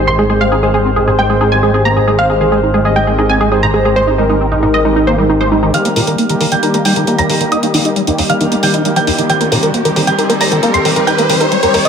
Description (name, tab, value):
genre	uplifting trance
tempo	135 BPM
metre	4/4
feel	straight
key	unclear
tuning	A4 = 441 Hz
part	wide unison pluck	melody	0.0-11.9 s	Eb4 to C6	-16 LUFS	right 1 dB	cassette tape, ping-pong delay
part	warm baby grand piano	second line	0.0-11.9 s	Eb5 to C7	-21 LUFS	right 3 dB	low-pass filter, digital delay
part	warm velvety synth lead	second line	0.0-5.7 s	Bb4 to Eb5	-18 LUFS	equal	chorus, tape echo
part	filtered supersaw swell	sustained chords	0.0-11.9 s	Eb3 to G4	-17 LUFS	left 1 dB	none
part	liquid acid bass	arpeggios	0.0-11.9 s	Eb2 to Eb4	-18 LUFS	right 1 dB	analog chorus, cassette tape, digital delay
part	fat analog bass	bass	0.0-11.9 s	Ab1 to Eb2	-18 LUFS	left 1 dB	high-pass filter
part	electronic hi-hat	drums	5.7-11.9 s	none	-19 LUFS	right 1 dB	high-pass filter on hats, high-pass filter on room
part	riser	sound effects	8.0-11.9 s	none	-19 LUFS	left 1 dB	none
room	moderate lush hall reverb, RT60 1.8 s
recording	low-pass filter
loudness	-10 LUFS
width	side -7 dB against mid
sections	0.0-5.7 A section; 5.7-11.9 B section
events	filter sweep on supersaw synth 0.0-5.7; filter sweep 0.0-5.7; build-up 5.7-11.9; filter sweep on synth pluck 5.7-11.9; filter sweep on acid bass 5.7-11.9; filter sweep on grand piano 5.7-11.9; riser 8.0-11.9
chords	0.0 Abmaj7; 5.7 Eb